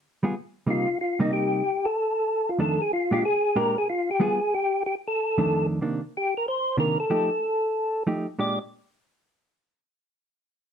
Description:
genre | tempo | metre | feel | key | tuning
jazz | 186 BPM | 4/4 | swing 64% on 8ths | unclear | A4 = 439 Hz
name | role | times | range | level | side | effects
hollow-body jazz guitar | accompaniment | 0.2-8.6 s | F2 to Ab4 | -25 LUFS | right 2 dB | none
percussive tonewheel organ | melody | 0.7-8.6 s | Eb4 to D5 | -24 LUFS | left 1 dB | slow rotary speaker
room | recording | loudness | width
moderate studio reverb, RT60 0.6 s | none | -23 LUFS | side -7 dB against mid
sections
0.0-5.8 A section; 5.8-8.4 B section; 8.4-9.7 C section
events
none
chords
0.0 G7b9; 0.7 Cm7; 1.9 F13; 3.2 Bb6; 3.9 G7b9; 4.5 N.C.; 5.2 F6; 5.8 Cm9; 7.1 F9; 8.4 Bb6

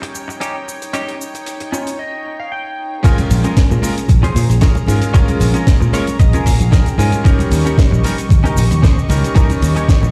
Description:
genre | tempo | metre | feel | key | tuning
nu-disco, nu disco | 114 BPM | 4/4 | swing 54% on 16ths | Bb dorian | A4 = 440 Hz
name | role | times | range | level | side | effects
bright electric grand piano | accompaniment | 0.0-10.1 s | G3 to Bb4 | -25 LUFS | equal | sidechain pumping, digital delay
dark studio string section | sustained chords | 0.0-10.1 s | Db4 to Db6 | -30 LUFS | equal | sidechain pumping
direct-recorded clean electric guitar | riff | 0.0-10.1 s | Db4 to Ab5 | -26 LUFS | equal | lush chorus, low-pass filter, digital delay
tight funk drum kit | drums | 0.0-10.1 s | cabasa, crash cymbal, hi-hat, rim click, snare drum | -28 LUFS | equal | none
electronic kick drum | drums | 3.0-10.0 s | none | -14 LUFS | equal | none
cabasa and congas | percussion | 3.0-10.1 s | none | -26 LUFS | equal | none
fingered electric bass | bass | 3.3-10.1 s | Bb1 to Bb2 | -17 LUFS | equal | sidechain pumping
room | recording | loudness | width
small room ambience | played on a big sound system in a bare room, large studio reverb | -14 LUFS | mono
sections
0.0-3.0 A section; 3.0-10.1 B section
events
clean electric guitar fill 1.5-3.0, 5.7-7.3; drop 3.0-10.1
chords
0.0 Eb7; 3.0 Bbm7; 7.3 Eb7

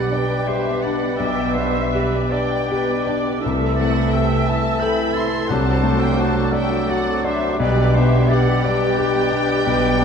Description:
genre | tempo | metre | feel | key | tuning
classical | 52-60 BPM (dotted quarters) | 12/8 | rubato | G major | A4 = 441 Hz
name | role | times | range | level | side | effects
clear grand piano | melody | 0.0-10.0 s | B1 to E5 | -21 LUFS | left 3 dB | none
warm studio violin section | melody | 0.0-10.0 s | D5 to C6 | -28 LUFS | left 2 dB | none
clear oboe | second line | 0.0-10.0 s | B4 to A5 | -29 LUFS | right 2 dB | none
small flute group | second line | 0.0-10.0 s | D6 to E6 | -32 LUFS | left 1 dB | none
warm clarinet | second line | 0.0-10.0 s | A4 to B4 | -30 LUFS | left 3 dB | none
warm studio violin section | second line | 0.0-10.0 s | G3 to B4 | -29 LUFS | left 4 dB | none
rich studio viola section | accompaniment | 0.0-10.0 s | G4 to E5 | -28 LUFS | right 2 dB | none
warm bassoon | accompaniment | 0.0-10.0 s | E3 to G3 | -28 LUFS | right 2 dB | none
clear French horn section | sustained chords | 0.0-10.0 s | F#3 to E4 | -27 LUFS | left 1 dB | none
rich studio cello section | bass | 1.2-10.0 s | B2 to C3 | -26 LUFS | right 3 dB | none
warm symphonic double bass section | bass | 1.2-10.0 s | B1 to C2 | -25 LUFS | right 4 dB | none
room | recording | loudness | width
wet scoring stage reverb, RT60 1.6 s | dark, warm production | -16 LUFS | side -6 dB against mid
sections
0.0-10.0 A section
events
none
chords
0.0 G/B; 3.4 Am7/C; 5.5 D7/C; 7.6 G/B

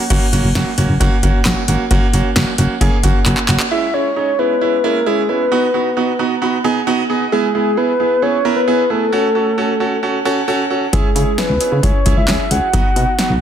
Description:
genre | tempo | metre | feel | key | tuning
synth-pop | 133 BPM | 4/4 | straight | unclear | A4 = 445 Hz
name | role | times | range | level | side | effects
bright grand piano | accompaniment | 0.1-13.3 s | G#3 to B5 | -18 LUFS | right 4 dB | none
solid FM bass | bass | 0.1-3.6, 10.9-13.4 s | F#1 to C#3 | -17 LUFS | equal | none
electro analog drum machine | drums | 0.1-3.7, 10.9-13.3 s | crash cymbal, handclaps, hi-hat, kick drum, snare drum | -16 LUFS | equal | none
soft octave-layered synth lead | melody | 3.7-13.4 s | G#4 to F#5 | -17 LUFS | left 1 dB | chorus
room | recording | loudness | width
moderate plate reverb, RT60 2.0 s, digital ambience | dense, heavily limited modern master | -13 LUFS | side -9 dB against mid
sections
0.1-3.7 A section; 3.7-13.4 B section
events
drum fill 3.3-3.7; grand piano fill 6.0-7.3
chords
0.1 F#; 3.7 C#m; 5.5 B; 7.3 E; 9.1 F#m; 10.9 C#m; 12.7 B

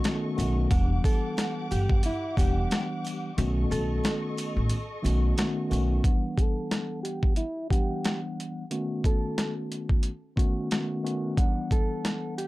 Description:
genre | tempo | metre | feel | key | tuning
hip hop, boom-bap hip-hop | 90 BPM | 4/4 | swing 55% on 16ths | E dorian | A4 = 435 Hz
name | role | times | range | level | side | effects
mellow tine electric piano | accompaniment | 0.0-12.5 s | D#3 to F#5 | -31 LUFS | left 1 dB | medium stereo tremolo, cassette tape, high-pass filter, low-pass filter, plate reverb
dark studio string section | sustained chords | 0.0-6.0 s | G4 to D6 | -39 LUFS | equal | high-pass filter, low-pass filter, plate reverb
boom bap sampler-style drum kit | drums | 0.0-12.5 s | hi-hat, kick drum, rim click, snare drum | -26 LUFS | equal | overdrive
sleigh bells | percussion | 0.0-5.9 s | none | -48 LUFS | right 2 dB | none
upright bass | bass | 0.4-6.0 s | E1 to B1 | -26 LUFS | equal | none
mellow electric guitar | melody | 1.1-12.5 s | E4 to A4 | -34 LUFS | right 1 dB | high-pass filter, low-pass filter, plate reverb, digital delay
room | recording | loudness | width
little or no reverb | dark, warm production | -25 LUFS | side -19 dB against mid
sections
0.0-6.0 A section; 6.0-12.5 B section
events
kick muted 3.4-6.0; filter sweep 6.0-12.5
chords
0.0 B9; 0.7 Em9; 3.4 B9; 6.0 Em9; 8.7 B9; 11.4 Em9

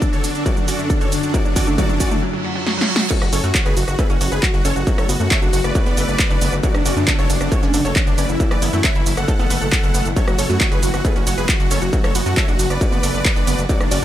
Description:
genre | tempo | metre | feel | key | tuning
uplifting trance | 136 BPM | 4/4 | straight | F# minor | A4 = 440 Hz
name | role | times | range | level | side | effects
dense compressed supersaw | melody | 0.0-14.0 s | D4 to F#5 | -24 LUFS | equal | sidechain pumping, digital delay
shimmering ambient pad | sustained chords | 0.0-14.0 s | F#2 to A4 | -28 LUFS | left 1 dB | chorus, built-in reverb, sidechain pumping
wide unison pluck | arpeggios | 0.0-14.0 s | E3 to C#5 | -28 LUFS | right 2 dB | phaser, sidechain pumping, digital delay
electronic kick drum | drums | 0.0-13.8 s | none | -18 LUFS | equal | distortion
punchy analog drum machine | drums | 0.0-14.0 s | crash cymbal, handclaps, hi-hat, ride cymbal, rim click, shaker, snare drum | -22 LUFS | right 1 dB | overdrive
riser and reverse cymbal | sound effects | 0.6-3.1 s | none | -28 LUFS | right 2 dB | none
wide unison pluck | second line | 3.1-14.0 s | D4 to F#5 | -30 LUFS | equal | sidechain pumping, digital delay
gritty driven synth bass | bass | 3.2-14.0 s | F#1 to F#2 | -22 LUFS | equal | sidechain pumping
room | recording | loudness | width
digital ambience | none | -15 LUFS | side -12 dB against mid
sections
0.0-3.1 A section; 3.1-14.0 B section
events
build-up 0.0-3.1; drum fill 0.0-2.2, 2.7-3.1; filter sweep on synth pluck 0.0-3.1; riser 0.6-3.1; reverse cymbal 2.2-3.1; drop 3.1-14.0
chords
0.0 Dmaj7/F#; 1.3 Esus4/F#; 3.1 F#m; 4.9 Bm7/F#; 6.6 Dmaj7/F#; 8.4 Esus4/F#; 10.2 F#m; 11.9 Bm7/F#

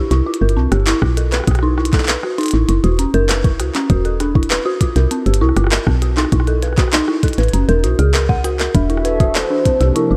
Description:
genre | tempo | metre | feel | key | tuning
IDM | 99 BPM | 4/4 | straight | unclear | A4 = 437 Hz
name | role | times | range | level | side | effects
dark detuned synth bell | arpeggios | 0.0-10.2 s | C4 to F#5 | -21 LUFS | equal | chorus, digital delay
woody FM bass | bass | 0.1-10.2 s | E1 to C#2 | -19 LUFS | equal | none
glitchy drum kit | drums | 0.1-10.1 s | handclaps, hi-hat, rim click | -24 LUFS | equal | delay
electronic kick drum | drums | 1.0-9.8 s | none | -18 LUFS | equal | none
warbly nostalgic lead | melody | 8.7-10.2 s | Bb4 to E5 | -21 LUFS | equal | chorus, tremolo
hollow soft pad | sustained chords | 9.0-10.2 s | C3 to A4 | -25 LUFS | equal | chorus, sidechain pumping
room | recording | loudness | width
digital ambience | none | -16 LUFS | mono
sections
0.0-10.2 A section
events
none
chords
0.0 C5; 1.2 B7(no3); 2.7 F#7(no3); 3.9 Esus2; 4.8 C7(no3); 6.0 B7(no3); 7.5 F#7(no3); 8.7 E9sus4; 9.7 C9sus4

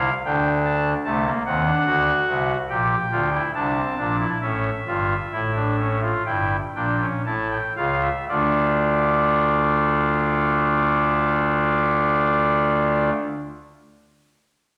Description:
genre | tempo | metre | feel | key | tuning
classical, baroque-style 3-part fugue for pipe organ | 57-75 BPM | 4/4 | straight | D minor | A4 = 441 Hz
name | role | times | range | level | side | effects
pipe organ, soft reed | solo | 0.0-13.1 s | G1 to A5 | -21 LUFS | equal | none
room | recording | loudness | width
wet recital hall reverb, RT60 1.3 s | none | -21 LUFS | mono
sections
0.0-8.3 A section; 8.3-12.5 B section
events
slowing down 0.0-8.3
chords
0.0 Dm; 1.0 D7/C; 2.7 Gm/Bb; 4.4 A7; 8.3 Dm

